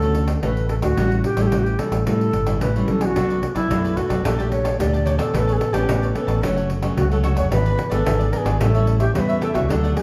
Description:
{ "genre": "samba and choro", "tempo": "110 BPM", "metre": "4/4", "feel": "straight", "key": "unclear", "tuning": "A4 = 440 Hz", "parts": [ { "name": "wooden flute", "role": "melody", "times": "0.0-10.0 s", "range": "E4 to D5", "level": "-26 LUFS", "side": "equal", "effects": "slapback echo, plate reverb" }, { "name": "nylon-string guitar", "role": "accompaniment", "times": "0.0-10.0 s", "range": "F#2 to G4", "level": "-27 LUFS", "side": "equal", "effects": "none" }, { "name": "fingered electric bass", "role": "bass", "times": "0.0-9.9 s", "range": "F#1 to A2", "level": "-24 LUFS", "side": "equal", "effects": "none" }, { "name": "pandeiro", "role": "percussion", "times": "0.0-10.0 s", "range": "none", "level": "-29 LUFS", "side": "equal", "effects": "none" }, { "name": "cavaquinho", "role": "accompaniment", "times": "3.2-10.0 s", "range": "D4 to A5", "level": "-33 LUFS", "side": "equal", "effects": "none" } ], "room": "wet large studio reverb, RT60 0.8 s", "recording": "heard from further back in the room", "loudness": "-20 LUFS", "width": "mono", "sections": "0.0-10.0 A section", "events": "none", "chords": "0.0 Dmaj7; 1.0 A7; 3.2 Bm7; 4.2 Gmadd9/Bb; 5.3 Aadd9; 6.4 F#m; 7.5 E7/G#; 8.6 A7", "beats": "0.43 | 0.97 1.52 2.06 2.61 | 3.15 3.70 4.25 4.79 | 5.34 5.88 6.43 6.97 | 7.52 8.06 8.61 9.15 | 9.70" }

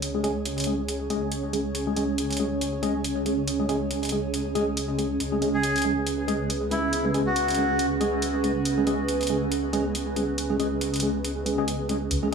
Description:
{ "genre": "deep dubstep", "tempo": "139 BPM", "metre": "4/4", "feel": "swing 57% on 16ths, half-time", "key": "unclear", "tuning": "A4 = 439 Hz", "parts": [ { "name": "granular cloud pad", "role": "sustained chords", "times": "0.0-12.3 s", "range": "C#4 to C#5", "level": "-28 LUFS", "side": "right 2 dB", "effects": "built-in reverb" }, { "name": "dark detuned saw bass", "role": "bass", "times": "0.0-12.3 s", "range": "C#2", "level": "-33 LUFS", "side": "left 1 dB", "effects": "none" }, { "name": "electronic hi-hat", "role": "drums", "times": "0.0-12.2 s", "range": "none", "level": "-32 LUFS", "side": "equal", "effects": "overdrive, high-pass filter on hats, studio reverb, high-pass filter on cymbals, high-pass filter on snare" }, { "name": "mellow tine electric piano", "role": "stabs", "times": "0.1-12.3 s", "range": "G#3 to G#4", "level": "-28 LUFS", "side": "right 1 dB", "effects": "medium stereo tremolo, low-pass filter, dub echo" }, { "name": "melodica", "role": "melody", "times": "5.5-7.9 s", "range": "E4 to G#4", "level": "-30 LUFS", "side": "left 2 dB", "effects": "dub echo" } ], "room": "wet digital room reverb, RT60 1.2 s, digital ambience", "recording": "studio reverb", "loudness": "-23 LUFS", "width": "side -6 dB against mid", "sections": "0.0-12.1 A section", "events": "none", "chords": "0.0 C#5", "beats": "| 0.02 0.45 0.89 1.32 | 1.75 2.18 2.61 3.04 | 3.48 3.91 4.34 4.77 | 5.20 5.63 6.07 6.50 | 6.93 7.36 7.79 8.22 | 8.66 9.09 9.52 9.95 | 10.38 10.81 11.25 11.68 | 12.11" }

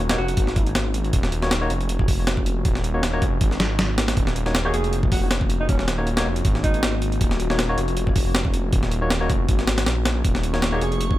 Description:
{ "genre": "drum and bass, jungle", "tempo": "158 BPM", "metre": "4/4", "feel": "swing 54% on 16ths", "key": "Eb minor", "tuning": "A4 = 438 Hz", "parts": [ { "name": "warbly tape-like pad", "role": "sustained chords", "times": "0.0-11.2 s", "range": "Bb3 to Gb4", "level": "-30 LUFS", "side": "left 2 dB", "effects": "chorus, built-in reverb" }, { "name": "detuned saw bass", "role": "bass", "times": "0.0-11.2 s", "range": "Eb1 to Bb1", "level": "-24 LUFS", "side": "equal", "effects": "tube saturation" }, { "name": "breathy alto saxophone", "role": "melody", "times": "0.1-0.7, 4.7-7.0, 10.7-11.0 s", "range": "Db4 to Ab4", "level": "-30 LUFS", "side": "right 2 dB", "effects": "dub echo" }, { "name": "barky tine electric piano", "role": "stabs", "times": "0.1-10.8 s", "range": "Bb3 to Db5", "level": "-30 LUFS", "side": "left 2 dB", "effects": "vintage 12-bit sampler grit, dub echo" }, { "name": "breakbeat sampler-style drum kit", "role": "drums", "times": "0.1-11.2 s", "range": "hi-hat, kick drum, snare drum", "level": "-22 LUFS", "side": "equal", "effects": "none" }, { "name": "drifting glass-harmonics texture", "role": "texture", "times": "10.4-11.2 s", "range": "Db6", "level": "-34 LUFS", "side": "right 4 dB", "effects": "chorus, built-in reverb" } ], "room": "digital ambience", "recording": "none", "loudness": "-19 LUFS", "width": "side -15 dB against mid", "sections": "0.0-11.2 A section", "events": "none", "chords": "0.0 Ebm7", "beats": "0.37 0.75 | 1.13 1.51 1.89 2.27 | 2.65 3.03 3.41 3.79 | 4.17 4.55 4.93 5.31 | 5.69 6.07 6.45 6.83 | 7.21 7.59 7.97 8.35 | 8.73 9.11 9.49 9.87 | 10.24 10.62 11.01" }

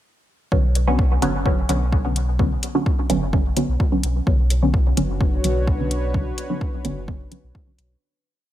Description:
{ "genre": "dub techno", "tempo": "128 BPM", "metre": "4/4", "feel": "straight", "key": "B minor", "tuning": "A4 = 440 Hz", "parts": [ { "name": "filtered dub chord stab", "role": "stabs", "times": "0.5-7.8 s", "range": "D3 to C#4", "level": "-23 LUFS", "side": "equal", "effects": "chorus, phaser, vintage 12-bit sampler grit, sidechain pumping, dub echo" }, { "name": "warm sub bass", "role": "bass", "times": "0.5-8.0 s", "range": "F#1 to B1", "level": "-22 LUFS", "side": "equal", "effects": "sidechain pumping" }, { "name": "electronic kick drum", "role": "drums", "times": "0.5-7.6 s", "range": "none", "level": "-22 LUFS", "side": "equal", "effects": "overdrive, studio reverb" }, { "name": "electronic hi-hat", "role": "drums", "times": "0.8-7.9 s", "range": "none", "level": "-28 LUFS", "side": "left 2 dB", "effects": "overdrive, studio reverb" }, { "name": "dark analog pad", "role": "sustained chords", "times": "4.9-8.0 s", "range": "D4 to C#5", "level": "-28 LUFS", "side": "left 1 dB", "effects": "chorus, vintage 12-bit sampler grit, sidechain pumping" } ], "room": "digital ambience", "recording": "none", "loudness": "-18 LUFS", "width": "side -13 dB against mid", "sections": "0.5-8.0 groove", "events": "filter sweep on synth stab 0.5-8.0; fade-out 5.5-8.0", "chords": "0.5 Bmadd9", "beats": "| 0.52 0.99 1.46 1.93 | 2.40 2.86 3.33 3.80 | 4.27 4.74 5.21 5.68 | 6.14 6.61 7.08 7.55" }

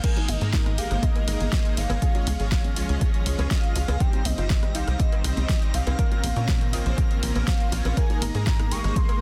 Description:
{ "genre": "progressive house", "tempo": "121 BPM", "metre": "4/4", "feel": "straight", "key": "Ab major", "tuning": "A4 = 444 Hz", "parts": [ { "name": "warm velvety synth lead", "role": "melody", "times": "0.0-9.2 s", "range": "Eb5 to Db6", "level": "-37 LUFS", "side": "equal", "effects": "chorus, tape echo" }, { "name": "dark chamber string section", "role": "sustained chords", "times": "0.0-9.2 s", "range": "Db3 to Db4", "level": "-39 LUFS", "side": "equal", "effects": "sidechain pumping" }, { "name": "soft round pluck", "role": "arpeggios", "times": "0.0-9.2 s", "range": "Bb3 to Eb5", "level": "-41 LUFS", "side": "equal", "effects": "ensemble chorus, sidechain pumping, delay" }, { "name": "soft supersaw", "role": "stabs", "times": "0.0-9.2 s", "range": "G3 to F5", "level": "-37 LUFS", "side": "equal", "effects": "ensemble chorus, sidechain pumping, delay" }, { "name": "deep house drum kit", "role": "drums", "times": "0.0-9.2 s", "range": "crash cymbal, hi-hat, ride cymbal, rim click, snare drum", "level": "-35 LUFS", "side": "equal", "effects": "sidechain pumping on hats, small room reverb, sidechain pumping on cymbals" }, { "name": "electronic kick drum", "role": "drums", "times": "0.0-9.1 s", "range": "none", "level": "-26 LUFS", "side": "equal", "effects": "small room reverb" }, { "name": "drifting glass-harmonics texture", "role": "texture", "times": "0.0-9.2 s", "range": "Bb6", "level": "-46 LUFS", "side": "equal", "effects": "chorus, built-in reverb, sidechain pumping" }, { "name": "bongos, congas and cowbell", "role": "percussion", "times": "0.2-9.2 s", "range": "none", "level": "-38 LUFS", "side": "equal", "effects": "sidechain pumping on perc" }, { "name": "tight sequencer bass", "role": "bass", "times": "0.3-8.9 s", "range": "G1 to Bb2", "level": "-28 LUFS", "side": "equal", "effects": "sidechain pumping" } ], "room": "little or no reverb", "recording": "dense, heavily limited modern master", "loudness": "-24 LUFS", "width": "mono", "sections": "0.0-9.2 A section", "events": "none", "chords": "0.0 Absus2; 2.0 Db; 4.0 Cm; 6.0 Bbmadd9; 8.0 Absus2", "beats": "| 0.04 0.53 1.03 1.52 | 2.02 2.52 3.01 3.51 | 4.00 4.50 5.00 5.49 | 5.99 6.48 6.98 7.47 | 7.97 8.47 8.96" }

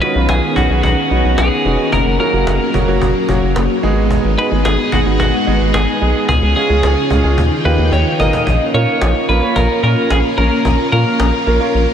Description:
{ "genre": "synth-pop", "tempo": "110 BPM", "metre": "4/4", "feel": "straight", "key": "unclear", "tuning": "A4 = 440 Hz", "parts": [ { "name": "twelve-string electric guitar", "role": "melody", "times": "0.0-11.9 s", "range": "F#4 to D#5", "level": "-18 LUFS", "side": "equal", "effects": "spring reverb, diffuse ambient delay" }, { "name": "clear baby grand piano", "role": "accompaniment", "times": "0.0-11.8 s", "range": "F#3 to G5", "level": "-19 LUFS", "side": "right 3 dB", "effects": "none" }, { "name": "string machine, full ensemble", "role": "sustained chords", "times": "0.0-11.9 s", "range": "C#3 to G5", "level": "-19 LUFS", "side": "left 1 dB", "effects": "ensemble chorus" }, { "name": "cajon", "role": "drums", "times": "0.0-11.8 s", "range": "none", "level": "-24 LUFS", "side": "equal", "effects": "none" }, { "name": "rubbery square bass", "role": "bass", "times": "0.2-11.9 s", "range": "E#1 to A#2", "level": "-16 LUFS", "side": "equal", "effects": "none" } ], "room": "wet huge ambient reverb, RT60 7.1 s", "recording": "dreamy mix soaked in reverb", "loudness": "-12 LUFS", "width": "side -8 dB against mid", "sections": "0.0-8.5 A section; 8.5-11.9 B section", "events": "grand piano fill 7.7-8.5; drum fill 7.9-8.5", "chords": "0.0 Badd9; 1.9 F#; 3.8 G#m; 6.3 C#; 7.4 D#add9; 8.5 A#m", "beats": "0.29 0.83 1.38 | 1.93 2.47 3.02 3.56 | 4.11 4.65 5.20 5.74 | 6.29 6.83 7.38 7.92 | 8.47 9.02 9.56 10.11 | 10.65 11.20 11.74" }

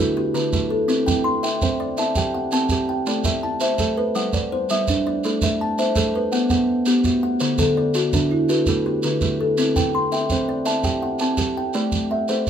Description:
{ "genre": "southern african traditional, mbira-style interlocking cycle", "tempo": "111 BPM (dotted quarters)", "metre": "12/8", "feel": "straight", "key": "unclear", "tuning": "A4 = 440 Hz", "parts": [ { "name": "kalimba", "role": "arpeggios", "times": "0.0-12.5 s", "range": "D3 to C6", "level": "-21 LUFS", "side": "left 2 dB", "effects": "none" }, { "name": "kalimba", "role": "arpeggios", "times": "0.0-12.5 s", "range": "D3 to A5", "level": "-24 LUFS", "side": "right 4 dB", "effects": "none" }, { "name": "shekere", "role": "percussion", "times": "0.3-12.5 s", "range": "none", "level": "-25 LUFS", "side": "right 3 dB", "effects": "none" } ], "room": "light reverb", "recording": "none", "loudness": "-18 LUFS", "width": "side -8 dB against mid", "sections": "0.0-11.7 A section", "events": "none", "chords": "0.0 D; 0.9 C; 3.1 Am; 4.2 G; 5.2 Am; 6.3 B5; 7.4 D; 9.6 C; 11.7 Am", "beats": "0.35 | 0.89 1.44 1.98 2.53 | 3.07 3.61 4.16 4.70 | 5.24 5.78 6.33 6.87 | 7.41 7.95 8.49 9.04 | 9.58 10.12 10.66 11.21 | 11.75 12.29" }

